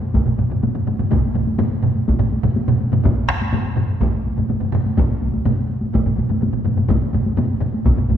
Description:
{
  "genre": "japanese traditional, taiko drum ensemble",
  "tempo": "124 BPM",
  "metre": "4/4",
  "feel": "straight",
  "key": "none",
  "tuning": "none",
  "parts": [
    { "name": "solo taiko drums", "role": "percussion", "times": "0.0-8.2 s", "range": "none", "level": "-23 LUFS", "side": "left 1 dB", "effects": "none" },
    { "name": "taiko ensemble", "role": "percussion", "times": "0.1-8.2 s", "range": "none", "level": "-22 LUFS", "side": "left 2 dB", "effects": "none" },
    { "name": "taiko ensemble", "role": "percussion", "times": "0.1-8.2 s", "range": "none", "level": "-22 LUFS", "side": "right 3 dB", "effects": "none" },
    { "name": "taiko ensemble", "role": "percussion", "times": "0.1-8.0 s", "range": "none", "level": "-22 LUFS", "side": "equal", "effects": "none" }
  ],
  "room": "wet concert hall reverb, RT60 1.9 s",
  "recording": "recorded in a church or concert hall, lossy compression artefacts",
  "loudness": "-17 LUFS",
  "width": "side -9 dB against mid",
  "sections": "0.0-8.2 A section",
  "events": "none",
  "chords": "none",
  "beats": "| 0.15 0.63 1.11 1.60 | 2.08 2.57 3.05 3.53 | 4.01 4.50 4.98 5.46 | 5.94 6.42 6.91 7.39 | 7.87"
}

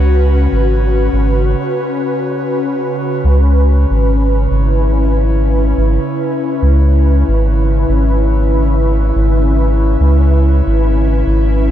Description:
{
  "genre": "ambient dub",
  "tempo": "71 BPM",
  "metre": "4/4",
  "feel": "swing 57% on 16ths",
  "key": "C# minor",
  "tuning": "A4 = 440 Hz",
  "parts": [
    { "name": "airy breathy pad", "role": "sustained chords", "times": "0.0-11.7 s", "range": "C#3 to B4", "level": "-16 LUFS", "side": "left 1 dB", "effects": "chorus" },
    { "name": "soft dub sub bass", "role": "bass", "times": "0.0-11.7 s", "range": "G#1 to C#2", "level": "-12 LUFS", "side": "equal", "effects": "none" }
  ],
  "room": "light reverb",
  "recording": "none",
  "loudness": "-11 LUFS",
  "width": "side -11 dB against mid",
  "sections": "0.0-3.2 A section; 3.2-11.7 B section",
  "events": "break 1.5-3.2",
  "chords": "0.0 C#7(no3); 3.2 C#m7",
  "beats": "0.70 1.55 2.39 | 3.24 4.08 4.93 5.77 | 6.62 7.46 8.31 9.15 | 10.00 10.84 11.69"
}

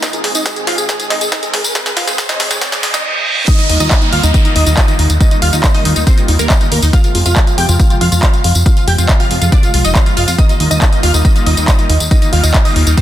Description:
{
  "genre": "uplifting trance",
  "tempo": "139 BPM",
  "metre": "4/4",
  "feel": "straight",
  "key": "Eb major",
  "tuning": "A4 = 442 Hz",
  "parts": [
    { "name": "wide unison pluck", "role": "melody", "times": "0.0-13.0 s", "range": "Bb3 to G5", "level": "-19 LUFS", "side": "equal", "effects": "sidechain pumping, ping-pong delay" },
    { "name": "filtered supersaw swell", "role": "sustained chords", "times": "0.0-13.0 s", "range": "C3 to Ab4", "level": "-23 LUFS", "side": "equal", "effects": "sidechain pumping" },
    { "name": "electronic kick drum", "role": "drums", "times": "0.0-13.0 s", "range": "none", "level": "-11 LUFS", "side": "equal", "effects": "high-pass filter on kick" },
    { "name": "punchy analog drum machine", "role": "drums", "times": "0.0-13.0 s", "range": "crash cymbal, handclaps, hi-hat, snare drum, tambourine", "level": "-17 LUFS", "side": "equal", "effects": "sidechain pumping on hats, high-pass filter on hats, soft clipping on snare, high-pass filter on snare, sidechain pumping on perc, high-pass filter on perc, sidechain pumping on cymbals, high-pass filter on cymbals" },
    { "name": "riser, reverse cymbal and downlifter", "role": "sound effects", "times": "0.0-6.9 s", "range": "none", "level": "-21 LUFS", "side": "right 2 dB", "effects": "none" },
    { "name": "plucky unison lead", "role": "second line", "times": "3.5-13.0 s", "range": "Eb5 to G6", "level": "-23 LUFS", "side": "equal", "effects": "lush chorus, sidechain pumping, ping-pong delay" },
    { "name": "plucky analog bass", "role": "bass", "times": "3.7-12.9 s", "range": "F1 to F2", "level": "-13 LUFS", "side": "equal", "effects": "sidechain pumping" }
  ],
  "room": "light reverb, digital ambience",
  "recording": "dense, heavily limited modern master, high-pass filter",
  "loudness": "-10 LUFS",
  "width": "side -12 dB against mid",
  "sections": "0.0-3.5 A section; 3.5-13.0 B section",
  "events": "build-up 0.0-3.5; drum fill 0.0-3.0; riser 0.0-3.0; reverse cymbal 2.6-3.5; drop 3.5-13.0",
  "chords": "0.0 Ab; 3.5 Ebadd9; 6.9 Fm; 10.4 Ebadd9",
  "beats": "| 0.03 0.46 0.89 1.32 | 1.75 2.18 2.62 3.05 | 3.48 3.91 4.34 4.77 | 5.21 5.64 6.07 6.50 | 6.93 7.36 7.79 8.23 | 8.66 9.09 9.52 9.95 | 10.38 10.82 11.25 11.68 | 12.11 12.54 12.97"
}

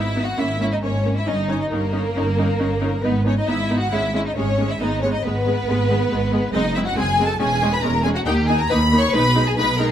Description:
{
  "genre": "quick classical-period movement for string orchestra",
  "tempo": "138 BPM",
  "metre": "4/4",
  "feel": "rubato",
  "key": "G# minor",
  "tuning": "A4 = 439 Hz",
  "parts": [
    { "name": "warm symphonic violin section", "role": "melody", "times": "0.0-9.9 s", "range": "A#3 to C#5", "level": "-26 LUFS", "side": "left 2 dB", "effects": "none" },
    { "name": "rich symphonic violin section", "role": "second line", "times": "0.0-9.9 s", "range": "A#4 to C#6", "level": "-24 LUFS", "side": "left 1 dB", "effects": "none" },
    { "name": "rich symphonic viola section", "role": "accompaniment", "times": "0.0-9.9 s", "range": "G#3 to D#4", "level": "-24 LUFS", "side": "right 1 dB", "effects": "none" },
    { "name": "rich symphonic cello section", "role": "bass", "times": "0.0-9.9 s", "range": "D#2 to B2", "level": "-24 LUFS", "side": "right 1 dB", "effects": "none" },
    { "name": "warm chamber double bass section", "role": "bass", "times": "0.0-9.9 s", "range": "E1 to D#2", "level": "-25 LUFS", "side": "right 2 dB", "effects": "none" }
  ],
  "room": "light reverb",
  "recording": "close, detailed microphones",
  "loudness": "-17 LUFS",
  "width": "side -10 dB against mid",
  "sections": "0.0-9.9 A section",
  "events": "none",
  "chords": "0.4 C#m6/G#; 1.3 D#7/G; 3.0 G#m; 3.9 C#5/G#; 4.8 G#m; 6.5 G#7/F#; 7.4 C#m/E; 8.3 D#5; 9.1 G#m/B",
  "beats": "0.39 0.83 | 1.27 1.72 2.16 2.60 | 3.04 3.49 3.93 4.37 | 4.80 5.23 5.67 6.10 | 6.54 6.97 7.41 7.84 | 8.27 8.70 9.13 9.57"
}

